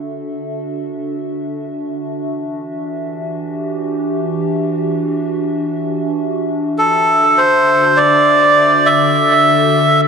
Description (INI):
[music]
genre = ambient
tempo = free time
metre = none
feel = none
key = E minor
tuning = A4 = 439 Hz
[part]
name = warbly tape-like pad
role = sustained chords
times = 0.0-10.1 s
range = D3 to E5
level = -18 LUFS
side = left 1 dB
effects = chorus, built-in reverb, phaser
[part]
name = melodica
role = melody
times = 6.8-10.0 s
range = A4 to E5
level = -10 LUFS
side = right 1 dB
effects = dub echo
[sound]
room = wet spring reverb, RT60 1.4 s, studio reverb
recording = none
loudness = -13 LUFS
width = side -6 dB against mid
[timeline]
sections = 0.0-10.1 A section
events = fade-in on ambient pad 0.0-10.1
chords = 0.0 Dadd9; 2.0 Em7; 6.8 Dadd9